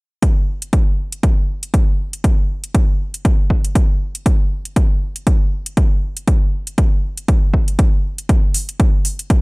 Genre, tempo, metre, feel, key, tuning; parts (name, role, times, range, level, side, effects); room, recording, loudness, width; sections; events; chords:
deep house; 119 BPM; 4/4; swing 57% on 16ths
electronic hi-hat; drums; 0.2-9.4 s; -24 LUFS; equal; overdrive
electronic kick drum; drums; 0.2-9.4 s; -14 LUFS; equal; overdrive
little or no reverb; -14 LUFS; side -28 dB against mid
0.2-9.4 A section